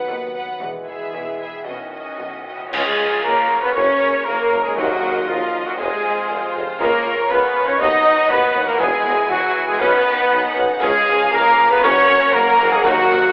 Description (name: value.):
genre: cinematic, heroic adventure film score.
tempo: 119 BPM.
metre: 4/4.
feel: straight.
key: unclear.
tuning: A4 = 440 Hz.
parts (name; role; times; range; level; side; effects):
warm symphonic violin section; melody; 0.0-13.3 s; C5 to G#5; -30 LUFS; equal; none.
rich symphonic violin section; second line; 0.0-13.3 s; F4 to D#5; -27 LUFS; equal; none.
rich symphonic viola section; accompaniment; 0.0-13.3 s; F3 to Bb4; -30 LUFS; equal; none.
mellow trombone section; sustained chords; 0.0-13.3 s; Db3 to Db4; -31 LUFS; equal; none.
concert harp; arpeggios; 0.0-13.3 s; Gb2 to Bb4; -40 LUFS; equal; none.
rich symphonic cello section; bass; 0.0-13.3 s; D#2 to D#4; -26 LUFS; equal; none.
timpani; percussion; 0.0-0.3, 4.8-5.5, 12.8-13.3 s; D#3; -32 LUFS; equal; none.
rich symphonic double bass section; bass; 0.1-13.2 s; E1 to Gb2; -38 LUFS; equal; none.
hollow concert flute; second line; 2.7-13.3 s; F5 to D#6; -26 LUFS; equal; none.
dark French horn section; sustained chords; 2.7-13.3 s; F4 to D#5; -25 LUFS; equal; none.
warm trumpet; stabs; 2.7-13.3 s; F4 to D#5; -22 LUFS; equal; none.
clear tuba; bass; 2.7-13.2 s; E1 to Eb2; -29 LUFS; equal; none.
clash cymbals and concert bass drum; percussion; 2.7-3.7 s; none; -29 LUFS; equal; none.
room: wet scoring stage reverb, RT60 1.7 s.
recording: telephone sound.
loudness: -17 LUFS.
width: mono.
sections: 0.0-2.7 A section; 2.7-13.3 B section.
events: band accent 2.7-3.2.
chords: 0.0 B/D#; 0.6 E; 1.7 Badd9; 2.7 Db; 3.8 Gb; 4.8 Ebm; 5.8 Fm; 6.8 Db; 7.8 B/D#; 8.8 E; 9.8 Badd9; 10.8 Db; 11.8 Gb.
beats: 0.10 | 0.62 1.14 1.67 2.20 | 2.73 3.24 3.76 4.27 | 4.78 5.28 5.79 6.30 | 6.80 7.30 7.81 8.31 | 8.81 9.31 9.81 10.32 | 10.82 11.32 11.83 12.34 | 12.84.